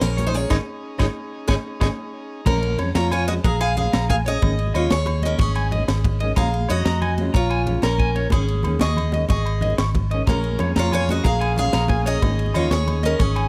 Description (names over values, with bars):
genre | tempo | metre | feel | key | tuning
highlife guitar band | 123 BPM (dotted quarters) | 12/8 | straight | Bb minor | A4 = 440 Hz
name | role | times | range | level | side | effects
picked steel-string acoustic guitar | melody | 0.0-13.5 s | Db4 to F5 | -27 LUFS | equal | none
combo organ | sustained chords | 0.0-2.5, 10.3-13.5 s | Bb3 to Ab4 | -36 LUFS | equal | none
vintage muted fingered electric bass | bass | 0.0-13.5 s | Ab1 to F2 | -25 LUFS | equal | none
tight funk drum kit | drums | 0.0-13.4 s | crash cymbal, hi-hat, kick drum, ride cymbal, snare drum | -25 LUFS | equal | none
agogo bells | percussion | 0.0-13.5 s | none | -38 LUFS | equal | none
congas | percussion | 0.0-13.5 s | none | -32 LUFS | equal | none
electric guitar at the edge of break-up | arpeggios | 0.2-13.5 s | Ab4 to Db6 | -31 LUFS | equal | tape echo
nylon-string guitar | accompaniment | 0.3-13.2 s | Eb3 to F4 | -34 LUFS | equal | none
room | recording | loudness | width
light reverb | none | -21 LUFS | mono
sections
0.0-2.5 A section; 2.5-13.5 B section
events
band accent 0.5-2.5; drum fill 1.5-2.5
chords
0.0 Bbm7; 0.5 Absus4; 2.5 Bbm7; 4.4 Absus4; 6.4 Bbm7; 8.3 Absus4; 10.3 Bbm7; 12.2 Absus4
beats
0.02 | 0.51 1.00 1.49 1.98 | 2.46 2.95 3.44 3.93 | 4.42 4.91 5.40 5.88 | 6.37 6.86 7.35 7.84 | 8.32 8.81 9.30 9.79 | 10.28 10.77 11.25 11.74 | 12.23 12.72 13.20